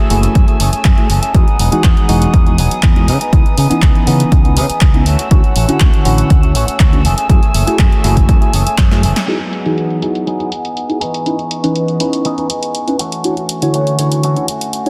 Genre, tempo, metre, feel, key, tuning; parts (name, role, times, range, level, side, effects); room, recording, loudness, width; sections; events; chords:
filtered disco house; 121 BPM; 4/4; straight; E major; A4 = 440 Hz
mellow tine electric piano; accompaniment; 0.0-14.9 s; D3 to C#5; -20 LUFS; equal; phaser, sidechain pumping, low-pass filter
warm studio violin section; sustained chords; 0.0-14.9 s; A3 to E6; -28 LUFS; equal; sidechain pumping, low-pass filter
electric guitar with an envelope filter; riff; 0.0-14.9 s; E3 to G#4; -23 LUFS; equal; sidechain pumping, low-pass filter
fingered electric bass; bass; 0.1-9.1 s; E1 to C#3; -17 LUFS; equal; sidechain pumping, low-pass filter
punchy analog drum machine; drums; 0.1-14.9 s; handclaps, hi-hat, snare drum; -24 LUFS; equal; overdrive, sidechain pumping on hats, low-pass filter on hats, low-pass filter on snare
electronic kick drum; drums; 0.4-8.9 s; -13 LUFS; equal; overdrive
light reverb, digital ambience; dense, heavily limited modern master; -13 LUFS; mono
0.0-9.3 A section; 9.3-14.9 B section
drum fill 8.8-9.3; band accent 9.2; filter sweep on drum 9.3-14.9; filter sweep 9.3-14.9
0.0 F#m9; 1.3 Emaj9; 3.1 C#m9; 5.1 Dmaj9; 7.0 F#m9; 9.3 Emaj9; 11.0 C#m9; 13.0 Dmaj9